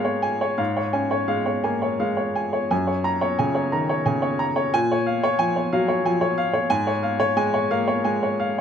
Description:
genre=neoclassical minimalist piano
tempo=81-92 BPM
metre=3/4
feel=rubato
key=unclear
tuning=A4 = 439 Hz
part: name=clear baby grand piano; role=solo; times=0.0-8.6 s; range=Gb2 to Bb5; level=-20 LUFS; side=equal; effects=none
room=light reverb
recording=none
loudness=-20 LUFS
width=side -8 dB against mid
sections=0.0-8.6 A section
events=none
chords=0.0 Db/Ab; 2.7 Gbadd9; 4.7 Bbm7; 6.7 Db/Ab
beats=| 0.59 1.29 2.00 | 2.71 3.40 4.07 | 4.73 5.39 6.04 | 6.70 7.36 8.04

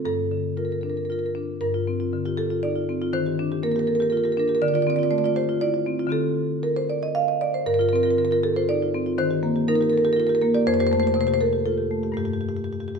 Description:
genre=classical, contemporary piece for solo marimba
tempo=119 BPM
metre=3/4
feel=straight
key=G minor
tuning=A4 = 440 Hz
part: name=marimba with medium mallets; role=solo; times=0.0-13.0 s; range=F2 to F5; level=-21 LUFS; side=equal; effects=none
room=wet stone room reverb, RT60 1.2 s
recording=none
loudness=-21 LUFS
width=side -5 dB against mid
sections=0.0-1.6 A section; 1.6-13.0 A section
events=none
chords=0.1 Gm7; 3.1 Ebmaj7; 4.6 Dm7; 6.1 D7sus4; 7.7 Gm7; 9.2 Eb; 10.7 Fadd9; 12.2 Gsus2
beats=| 0.06 0.58 1.10 | 1.61 2.12 2.63 | 3.13 3.63 4.13 | 4.62 5.11 5.61 | 6.12 6.64 7.15 | 7.66 8.17 8.68 | 9.18 9.68 10.17 | 10.66 11.16 11.66 | 12.18 12.71

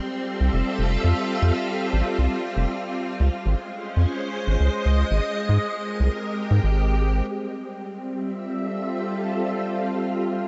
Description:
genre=IDM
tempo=118 BPM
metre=4/4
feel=straight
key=unclear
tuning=A4 = 440 Hz
part: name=soft string machine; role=sustained chords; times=0.0-10.5 s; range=G3 to E5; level=-28 LUFS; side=equal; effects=ensemble chorus
part: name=rubbery square bass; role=bass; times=0.4-7.2 s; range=F1 to Ab2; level=-22 LUFS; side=equal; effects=none
room=light reverb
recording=nothing above 8.0 kHz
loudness=-24 LUFS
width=mono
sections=0.0-7.3 A section; 7.3-10.5 B section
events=none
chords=0.0 Fmaj9; 3.2 Dbmaj9; 5.2 Abmaj9; 7.3 Fmaj9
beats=0.15 0.66 | 1.17 1.68 2.19 2.69 | 3.20 3.71 4.22 4.73 | 5.24 5.75 6.25 6.76 | 7.27 7.78 8.29 8.80 | 9.30 9.81 10.32

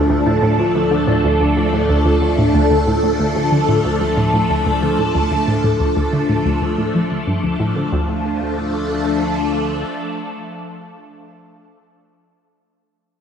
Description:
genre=ambient, sequencer-driven space music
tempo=92 BPM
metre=4/4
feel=straight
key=D minor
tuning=A4 = 438 Hz
part: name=phased string machine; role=sustained chords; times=0.0-11.3 s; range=F3 to A4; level=-18 LUFS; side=left 1 dB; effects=ensemble chorus, phaser
part: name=vibraphone with soft mallets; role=arpeggios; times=0.0-2.7 s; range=D4 to A4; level=-21 LUFS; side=moving between left 2 dB and right 5 dB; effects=auto-pan, tape echo
part: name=analog pluck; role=riff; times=0.0-8.2 s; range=D2 to F3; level=-19 LUFS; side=right 1 dB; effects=chorus, tape echo
part: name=fat analog bass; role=bass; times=0.0-9.8 s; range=D2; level=-27 LUFS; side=equal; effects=none
room=wet lush hall reverb, RT60 3.1 s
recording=dreamy mix soaked in reverb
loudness=-15 LUFS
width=side -7 dB against mid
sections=0.0-7.9 A section; 7.9-10.5 B section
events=fade-out on analog synth bass 0.0-7.9; filter sweep on synth arpeggio sound 0.0-7.9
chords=0.0 Dm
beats=| 0.10 0.75 1.40 2.06 | 2.71 3.36 4.01 4.66 | 5.32 5.97 6.62 7.27 | 7.92 8.58 9.23 9.88

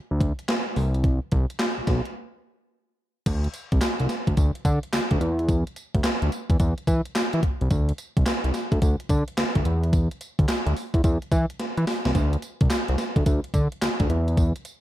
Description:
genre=R&B, new jack swing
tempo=108 BPM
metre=4/4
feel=swing 65% on 16ths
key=unclear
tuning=A4 = 440 Hz
part: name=fat analog bass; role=bass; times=0.1-14.5 s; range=B1 to E3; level=-23 LUFS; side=equal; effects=none
part: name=gated 80s digital drum machine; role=drums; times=0.2-14.8 s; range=crash cymbal, handclaps, hi-hat, kick drum, snare drum, tambourine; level=-23 LUFS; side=equal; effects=gated reverb, gated reverb snare, overdrive
room=little or no reverb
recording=none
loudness=-21 LUFS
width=side -14 dB against mid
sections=0.0-3.3 A section; 3.3-14.8 B section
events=break 2.2-3.3; drum fill 11.6-12.2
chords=none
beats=0.49 | 1.04 1.60 2.15 2.71 | 3.26 3.82 4.37 4.93 | 5.49 6.04 6.60 7.15 | 7.71 8.26 8.82 9.37 | 9.93 10.49 11.04 11.60 | 12.15 12.71 13.26 13.82 | 14.37

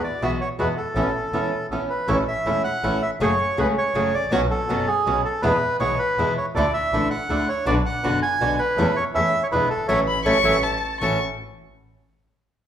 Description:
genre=tango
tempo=161 BPM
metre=3/4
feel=rubato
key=A major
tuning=A4 = 439 Hz
part: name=bandoneon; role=melody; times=0.0-11.2 s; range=G#4 to G#5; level=-23 LUFS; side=right 1 dB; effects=none
part: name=nylon-string guitar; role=accompaniment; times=0.2-11.2 s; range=A2 to G#4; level=-25 LUFS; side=equal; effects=none
part: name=bandoneon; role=stabs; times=0.2-11.2 s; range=A3 to B4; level=-31 LUFS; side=right 3 dB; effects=none
part: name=clear double bass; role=bass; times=0.2-11.2 s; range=E1 to E2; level=-28 LUFS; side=equal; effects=none
part: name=warm violin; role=second line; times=10.1-11.2 s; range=A5 to C#6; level=-22 LUFS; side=left 4 dB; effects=none
room=wet large studio reverb, RT60 1.2 s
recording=band playing live in one room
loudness=-19 LUFS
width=side -9 dB against mid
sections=0.0-2.1 A section; 2.1-11.0 B section; 11.0-12.1 C section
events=band accent 9.9-11.0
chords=0.0 Eadd9; 1.0 Aadd9; 2.1 A; 3.2 F#madd9; 4.3 Bsus2; 5.4 E; 6.5 Dsus2; 7.7 Bm; 8.8 A/E; 9.5 E7; 9.9 A6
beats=0.22 0.59 | 0.96 1.33 1.71 | 2.08 2.46 2.83 | 3.21 3.58 3.95 | 4.32 4.69 5.06 | 5.42 5.80 6.17 | 6.55 6.92 7.30 | 7.67 8.04 8.40 | 8.77 9.14 9.51 | 9.88 10.26 10.63 | 11.01

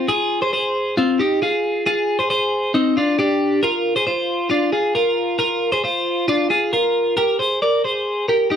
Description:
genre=indie pop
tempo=136 BPM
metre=4/4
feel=straight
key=unclear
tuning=A4 = 440 Hz
part: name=twelve-string electric guitar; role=solo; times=0.0-8.6 s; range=C4 to D5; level=-17 LUFS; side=equal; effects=none
room=wet small room reverb, RT60 0.6 s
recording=dark, warm production, vinyl crackle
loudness=-17 LUFS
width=side -8 dB against mid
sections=0.0-7.2 A section; 7.2-8.6 B section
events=none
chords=0.0 Fm7; 3.4 Bbadd9; 7.2 C7(no3)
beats=| 0.08 0.53 0.97 1.41 | 1.85 2.30 2.74 3.18 | 3.62 4.06 4.51 4.95 | 5.39 5.83 6.28 6.72 | 7.16 7.61 8.05 8.50

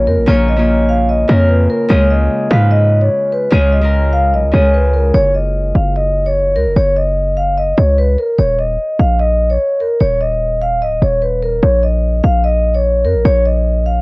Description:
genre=hip hop, trap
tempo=148 BPM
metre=4/4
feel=half-time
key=F# major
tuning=A4 = 441 Hz
part: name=vibraphone with soft mallets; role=melody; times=0.0-14.0 s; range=A#4 to E#5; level=-15 LUFS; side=equal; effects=cassette tape, analog delay
part: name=Celtic harp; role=accompaniment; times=0.0-7.1 s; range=C#3 to C#5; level=-18 LUFS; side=left 1 dB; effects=cassette tape
part: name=hard-hitting 808-style bass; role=bass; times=0.0-14.0 s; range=C#1 to G#2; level=-14 LUFS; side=equal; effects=none
room=light reverb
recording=home recording on cassette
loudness=-11 LUFS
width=side -24 dB against mid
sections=0.0-5.1 A section; 5.1-14.0 B section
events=none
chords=0.0 A#m; 1.9 C#; 5.1 F#5; 8.4 D#5; 11.6 A#5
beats=| 0.28 0.68 1.09 1.49 | 1.90 2.31 2.71 3.12 | 3.52 3.93 4.33 4.74 | 5.14 5.55 5.95 6.36 | 6.76 7.17 7.58 7.98 | 8.39 8.79 9.20 9.60 | 10.01 10.41 10.82 11.22 | 11.63 12.03 12.44 12.85 | 13.25 13.66

